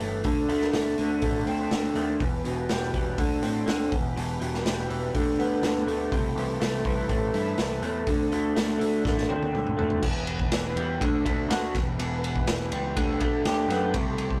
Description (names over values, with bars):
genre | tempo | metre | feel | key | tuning
psychedelic rock | 123 BPM | 4/4 | straight | E minor | A4 = 440 Hz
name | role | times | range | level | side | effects
muted studio string section | sustained chords | 0.0-14.4 s | B3 to B4 | -40 LUFS | equal | none
electric guitar through a small old amp | riff | 0.0-14.4 s | E2 to G4 | -30 LUFS | equal | rotary speaker
growling picked electric bass | bass | 0.0-14.4 s | E1 to A2 | -34 LUFS | equal | overdrive
raw garage drum kit | drums | 0.0-14.4 s | crash cymbal, hi-hat, kick drum, ride cymbal, snare drum, toms | -32 LUFS | equal | none
room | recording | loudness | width
light reverb | rough rehearsal-room recording, tube saturation | -27 LUFS | mono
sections
0.0-10.0 A section; 10.0-14.4 B section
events
drum fill 9.1-10.0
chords
0.3 D7; 2.2 Em; 3.2 D7; 3.9 Em; 5.1 Gadd9/D; 6.1 C6; 8.1 D7; 10.0 Em; 11.0 D7; 11.7 Em; 13.0 Gadd9/D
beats
| 0.25 0.74 1.23 1.72 | 2.21 2.70 3.19 3.68 | 4.17 4.65 5.14 5.63 | 6.12 6.61 7.10 7.59 | 8.08 8.57 9.06 9.55 | 10.04 10.53 11.02 11.51 | 11.99 12.48 12.97 13.46 | 13.95